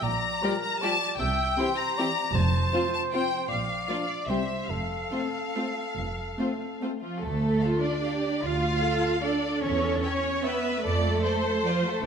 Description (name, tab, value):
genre	classical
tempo	133-170 BPM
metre	3/4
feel	rubato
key	F major, D minor from 7.2 s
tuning	A4 = 440 Hz
part	rich symphonic violin section	melody	0.0-11.7 s	D5 to Bb5	-30 LUFS	left 4 dB	none
part	mellow cor anglais	second line	0.0-7.0 s	A4 to E5	-33 LUFS	right 4 dB	none
part	warm symphonic cello section	bass	0.0-12.1 s	F2 to F4	-30 LUFS	right 3 dB	none
part	clear symphonic double bass section	bass	0.1-11.2 s	F1 to F2	-31 LUFS	right 2 dB	none
part	warm symphonic violin section	second line	0.4-12.1 s	F4 to F5	-32 LUFS	left 1 dB	none
part	rich studio viola section	accompaniment	0.4-12.0 s	G3 to E5	-32 LUFS	equal	none
part	mellow French horn section	sustained chords	0.4-7.0 s	E3 to G4	-36 LUFS	left 4 dB	none
part	timpani	percussion	2.3-2.9 s	F2	-33 LUFS	left 3 dB	none
room	moderate scoring stage reverb, RT60 1.6 s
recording	minimal, uncompressed stereo recording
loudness	-24 LUFS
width	side -7 dB against mid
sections	0.0-7.2 A section; 7.2-12.1 B section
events	none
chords	0.0 Gm7/Bb; 1.2 C; 2.3 F; 3.5 Bb; 4.3 C; 4.7 F; 7.2 Dm; 9.6 C#m/E; 10.8 Dm/F